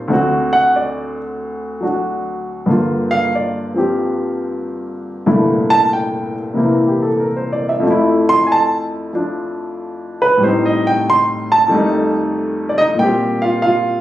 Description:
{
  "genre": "solo jazz",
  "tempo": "93 BPM",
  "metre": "4/4",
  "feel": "swing 67% on 8ths",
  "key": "unclear",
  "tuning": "A4 = 440 Hz",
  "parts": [
    { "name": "warm baby grand piano", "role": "solo", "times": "0.0-14.0 s", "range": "C2 to C6", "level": "-14 LUFS", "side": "equal", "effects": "none" }
  ],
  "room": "light reverb",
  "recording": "recorded on a phone in the room, club reverb, compression",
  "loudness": "-14 LUFS",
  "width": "side -13 dB against mid",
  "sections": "0.0-13.0 A section; 13.0-14.0 B section",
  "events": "grand piano solo 0.0-13.0",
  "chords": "0.1 D7; 2.7 Gm7; 5.3 C13; 7.8 Fmaj7; 10.4 Am7b5; 11.7 F9; 13.0 Bbsus2"
}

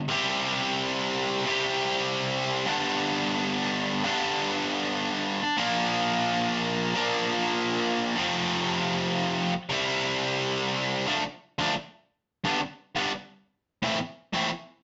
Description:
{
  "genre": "punk",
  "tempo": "free time",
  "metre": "none",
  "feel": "none",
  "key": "C major",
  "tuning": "A4 = 442 Hz",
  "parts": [
    { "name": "distorted electric guitar", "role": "solo", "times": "0.0-14.5 s", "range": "F2 to G4", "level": "-27 LUFS", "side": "equal", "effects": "overdrive" }
  ],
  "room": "moderate studio reverb, RT60 0.5 s",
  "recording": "rough rehearsal-room recording, nothing above 7.7 kHz",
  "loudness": "-27 LUFS",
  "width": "mono",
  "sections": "0.1-11.1 A section; 11.1-14.8 B section",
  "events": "half time 11.1-14.8",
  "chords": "0.1 C; 2.7 G; 5.6 Bb; 8.2 F; 9.7 C; 11.1 Dm; 12.4 G; 13.8 Am"
}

